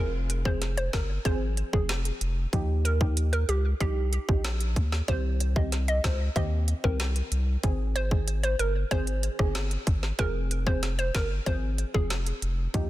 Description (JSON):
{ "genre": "dancehall", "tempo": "94 BPM", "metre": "4/4", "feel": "straight", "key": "F minor", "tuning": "A4 = 440 Hz", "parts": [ { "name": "hollow square pluck", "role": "melody", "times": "0.0-12.1 s", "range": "G4 to Eb5", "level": "-33 LUFS", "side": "right 1 dB", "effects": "chorus, digital delay" }, { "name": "deep mellow chord stab", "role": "accompaniment", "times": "0.0-12.9 s", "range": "Eb3 to Ab4", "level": "-36 LUFS", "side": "right 1 dB", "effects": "chorus" }, { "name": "round analog bass", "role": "bass", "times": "0.0-12.9 s", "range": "F1 to Eb2", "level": "-28 LUFS", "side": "equal", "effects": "none" }, { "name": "island pop drum kit", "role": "drums", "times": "0.3-12.9 s", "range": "hi-hat, kick drum, rim click, snare drum", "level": "-28 LUFS", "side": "equal", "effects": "none" } ], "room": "digital ambience", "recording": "dense, heavily limited modern master", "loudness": "-25 LUFS", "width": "side -15 dB against mid", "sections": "0.0-12.9 A section", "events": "none", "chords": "0.0 Fm; 2.5 Ebadd9; 5.1 Cm; 7.6 Ab; 10.2 Fm", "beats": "0.61 1.25 1.89 | 2.53 3.17 3.81 4.44 | 5.08 5.72 6.36 7.00 | 7.64 8.27 8.91 9.55 | 10.19 10.83 11.47 12.10 | 12.74" }